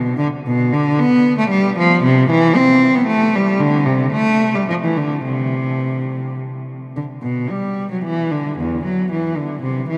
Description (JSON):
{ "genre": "classical, baroque-style suite movement for unaccompanied cello", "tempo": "103-116 BPM", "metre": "3/4", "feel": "rubato", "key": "C major", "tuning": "A4 = 440 Hz", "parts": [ { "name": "rich cello", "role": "solo", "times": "0.0-10.0 s", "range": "E2 to C4", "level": "-17 LUFS", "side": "equal", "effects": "none" } ], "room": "wet cathedral reverb, RT60 5.7 s", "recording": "in a vast, echoing space", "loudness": "-17 LUFS", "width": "mono", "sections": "0.0-7.0 A section; 7.0-10.0 A section", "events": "none", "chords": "none" }